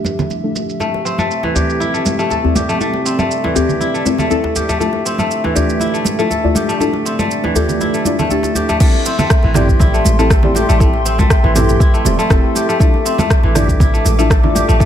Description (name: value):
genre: afro house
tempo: 120 BPM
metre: 4/4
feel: swing 54% on 16ths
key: A minor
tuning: A4 = 440 Hz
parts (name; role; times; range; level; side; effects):
- dark analog pad; sustained chords; 0.0-14.9 s; F3 to D6; -22 LUFS; right 1 dB; chorus, sidechain pumping
- deep mellow chord stab; stabs; 0.0-14.9 s; A3 to D5; -20 LUFS; left 3 dB; chorus, sidechain pumping, ping-pong delay
- congas; percussion; 0.0-14.9 s; none; -22 LUFS; right 2 dB; none
- deep house drum kit; drums; 0.1-14.9 s; crash cymbal, rim click, shaker, toms; -22 LUFS; right 2 dB; overdrive, low-pass filter on perc, low-pass filter on cymbals, low-pass filter on snare, low-pass filter on toms, low-pass filter on room
- kora; arpeggios; 0.8-14.9 s; E3 to A4; -18 LUFS; left 1 dB; sidechain pumping, ping-pong delay
- djembe; percussion; 1.4-8.8 s; none; -21 LUFS; equal; none
- electronic kick drum; drums; 8.8-14.9 s; none; -12 LUFS; equal; overdrive
- warm 808-style bass; bass; 9.4-14.9 s; E1 to A1; -16 LUFS; equal; sidechain pumping
room: light reverb, digital ambience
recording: none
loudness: -12 LUFS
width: side -10 dB against mid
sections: 0.0-8.8 A section; 8.8-14.9 B section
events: filter sweep on synth stab 0.0-8.8; drop 8.8-14.9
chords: 0.0 Dmadd9; 0.8 Am7; 4.8 Dmadd9; 8.8 Am7; 12.8 Dmadd9/A